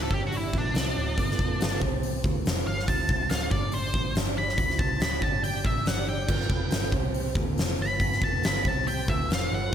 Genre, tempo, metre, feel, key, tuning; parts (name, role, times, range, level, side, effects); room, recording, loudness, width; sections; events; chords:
blues rock power trio and southern rock; 140 BPM; 4/4; straight; A4 = 440 Hz
octave-fuzz lead guitar; melody; 0.0-9.7 s; D4 to B5; -30 LUFS; equal; wah, distortion
mellow tonewheel organ; sustained chords; 0.0-9.7 s; G3 to D5; -36 LUFS; right 4 dB; slow rotary speaker, chorus vibrato
vintage muted picked electric bass; bass; 0.0-9.7 s; D1 to D2; -31 LUFS; equal
huge arena drum kit; drums; 0.1-9.4 s; crash cymbal, hi-hat, kick drum, snare drum; -27 LUFS; equal
light reverb; -24 LUFS; side -9 dB against mid
0.0-9.7 A section
lead electric guitar solo 0.0-9.7
0.1 G5; 0.5 D7; 1.2 G7; 1.8 C5; 2.2 G7; 2.9 D7; 3.5 G5; 3.9 Am; 4.2 G5; 4.6 D7; 5.2 G5; 5.7 A5; 5.9 G5; 6.3 G7; 6.9 C5; 7.4 G7; 8.7 C5; 9.1 G7